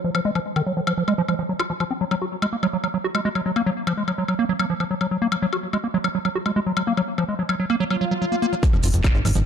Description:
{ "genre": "psychedelic trance", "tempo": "145 BPM", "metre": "4/4", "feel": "straight", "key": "F phrygian", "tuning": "A4 = 440 Hz", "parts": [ { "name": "liquid acid bass", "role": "riff", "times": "0.0-9.4 s", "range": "Eb3 to Gb4", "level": "-22 LUFS", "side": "moving between left 4 dB and right 7 dB", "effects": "chorus, auto-pan, sidechain pumping, digital delay" }, { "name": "drum and bass drum kit", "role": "drums", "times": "0.1-9.4 s", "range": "handclaps, hi-hat, woodblock", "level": "-28 LUFS", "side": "left 5 dB", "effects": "none" }, { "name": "swell and impact", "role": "sound effects", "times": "7.9-9.5 s", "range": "none", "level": "-25 LUFS", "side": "equal", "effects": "none" }, { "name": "electronic kick drum", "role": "drums", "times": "8.6-9.1 s", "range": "none", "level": "-19 LUFS", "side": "equal", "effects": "none" }, { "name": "maracas", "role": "percussion", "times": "8.6-9.4 s", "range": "none", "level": "-33 LUFS", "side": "right 6 dB", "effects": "none" }, { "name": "plucky analog bass", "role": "bass", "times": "8.7-9.4 s", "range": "F1 to Ab1", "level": "-20 LUFS", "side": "equal", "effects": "none" } ], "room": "light reverb, digital ambience", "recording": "dark, warm production", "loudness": "-20 LUFS", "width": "side -8 dB against mid", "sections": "0.0-8.6 A section", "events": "swell 7.9-8.6; impact 8.6-9.5", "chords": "0.0 F5; 2.0 N.C.; 8.6 F5", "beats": "| 0.35 0.77 1.18 1.59 | 2.01 2.42 2.84 3.25 | 3.66 4.08 4.49 4.91 | 5.32 5.73 6.15 6.56 | 6.97 7.39 7.80 8.22 | 8.63 9.04 9.46" }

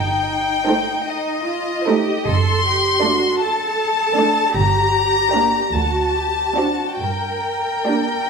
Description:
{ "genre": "classical, slow romantic movement for string orchestra", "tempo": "46-54 BPM (dotted quarters)", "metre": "12/8", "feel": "rubato", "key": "G minor", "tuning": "A4 = 440 Hz", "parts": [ { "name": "warm chamber violin section", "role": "melody", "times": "0.0-8.3 s", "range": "Eb5 to C6", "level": "-19 LUFS", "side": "left 4 dB", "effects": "none" }, { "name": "rich chamber cello section", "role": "bass", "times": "0.0-8.3 s", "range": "Eb4 to Bb4", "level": "-23 LUFS", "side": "right 3 dB", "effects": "none" }, { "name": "rich studio double bass section", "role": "bass", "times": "0.0-8.1 s", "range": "F#1 to G2", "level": "-23 LUFS", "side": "right 4 dB", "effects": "none" }, { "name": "warm chamber violin section", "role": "second line", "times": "0.7-8.2 s", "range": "F#4 to D5", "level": "-26 LUFS", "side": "right 2 dB", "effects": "none" }, { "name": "warm studio viola section", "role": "accompaniment", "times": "0.7-8.2 s", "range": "A3 to Eb4", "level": "-23 LUFS", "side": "right 4 dB", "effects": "none" } ], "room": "moderate scoring stage reverb, RT60 1.7 s", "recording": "minimal, uncompressed stereo recording", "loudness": "-16 LUFS", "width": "side -5 dB against mid", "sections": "0.0-8.3 A section", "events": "none", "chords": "0.0 Am7b5/G; 2.3 D7/F#; 4.6 Gm; 5.7 D7; 7.0 Gm", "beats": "1.05 | 2.26 3.39 4.55 5.74 | 7.00" }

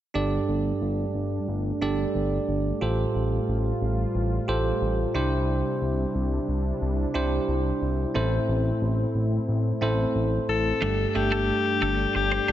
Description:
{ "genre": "pop", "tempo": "90 BPM", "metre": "4/4", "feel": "straight", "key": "unclear", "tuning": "A4 = 440 Hz", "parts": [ { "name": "bell-like tine electric piano", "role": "accompaniment", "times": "0.1-12.5 s", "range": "G2 to D5", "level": "-26 LUFS", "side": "right 2 dB", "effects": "none" }, { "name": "warm analog pad", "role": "sustained chords", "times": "0.1-12.5 s", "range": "C3 to F4", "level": "-33 LUFS", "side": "left 1 dB", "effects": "chorus" }, { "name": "smooth synth bass", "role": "bass", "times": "0.1-12.5 s", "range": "G1 to C2", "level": "-27 LUFS", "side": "equal", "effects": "none" }, { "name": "bright alto saxophone", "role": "melody", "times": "10.5-12.5 s", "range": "G4 to A4", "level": "-25 LUFS", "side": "left 6 dB", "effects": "ping-pong delay" }, { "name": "twelve-string electric guitar", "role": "riff", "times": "10.8-12.5 s", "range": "G3 to D4", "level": "-32 LUFS", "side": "right 3 dB", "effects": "wide subtle chorus, ping-pong delay" } ], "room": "light reverb", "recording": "nothing above 7.7 kHz", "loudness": "-23 LUFS", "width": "side -12 dB against mid", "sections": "0.1-10.8 A section; 10.8-12.5 B section", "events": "none", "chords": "0.1 Gsus2; 2.8 Fadd9/A; 5.2 Cadd9; 8.2 Am; 10.8 Gsus2", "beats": "| 0.15 0.82 1.48 2.15 | 2.82 3.48 4.15 4.82 | 5.48 6.15 6.82 7.48 | 8.15 8.82 9.48 10.15 | 10.82 11.48 12.15" }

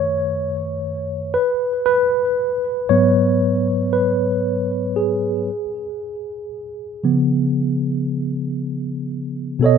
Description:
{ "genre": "R&B", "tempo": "58 BPM", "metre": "4/4", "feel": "swing 58% on 16ths", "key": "unclear", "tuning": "A4 = 441 Hz", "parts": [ { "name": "mellow tine electric piano", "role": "solo", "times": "0.0-9.8 s", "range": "G#2 to D#5", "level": "-18 LUFS", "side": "equal", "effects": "medium stereo tremolo" } ], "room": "light reverb", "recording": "rough home demo mix", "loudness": "-18 LUFS", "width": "side -6 dB against mid", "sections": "0.0-9.6 A section", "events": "tine electric piano solo 0.0-9.6", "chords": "0.0 B7/F#; 1.3 G#m7; 5.5 C#7", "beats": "0.31 | 1.35 2.38 3.42 4.45 | 5.48 6.52 7.55 8.59 | 9.62" }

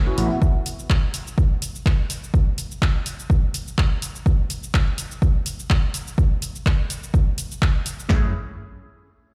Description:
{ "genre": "filtered disco house", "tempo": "125 BPM", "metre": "4/4", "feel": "swing 53% on 16ths", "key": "F# minor", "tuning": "A4 = 443 Hz", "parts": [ { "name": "gritty slap bass", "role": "bass", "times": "0.0-0.3, 8.1-8.3 s", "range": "A1 to F#2", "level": "-26 LUFS", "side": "equal", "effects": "overdrive, sidechain pumping, low-pass filter" }, { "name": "funky polysynth comp", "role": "accompaniment", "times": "0.1-0.4, 8.1-8.3 s", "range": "A3 to G#4", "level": "-32 LUFS", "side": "equal", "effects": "chorus, phaser, sidechain pumping, low-pass filter" }, { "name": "punchy analog drum machine", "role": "drums", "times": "0.2-8.1 s", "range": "handclaps, hi-hat, shaker", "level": "-32 LUFS", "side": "equal", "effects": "overdrive, sidechain pumping on hats, sidechain pumping on perc" }, { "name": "punchy analog drum machine", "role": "drums", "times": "0.4-8.2 s", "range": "handclaps, kick drum, snare drum", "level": "-21 LUFS", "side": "equal", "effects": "overdrive" } ], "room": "little or no reverb", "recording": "played on a big sound system in a bare room, large studio reverb", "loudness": "-22 LUFS", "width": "mono", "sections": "0.0-8.1 A section; 8.1-9.3 B section", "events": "filter sweep 0.0-8.1", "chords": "0.4 N.C.; 8.1 F#m9", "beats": "| 0.42 0.90 1.38 1.86 | 2.34 2.82 3.30 3.78 | 4.26 4.74 5.22 5.70 | 6.18 6.66 7.14 7.62 | 8.10" }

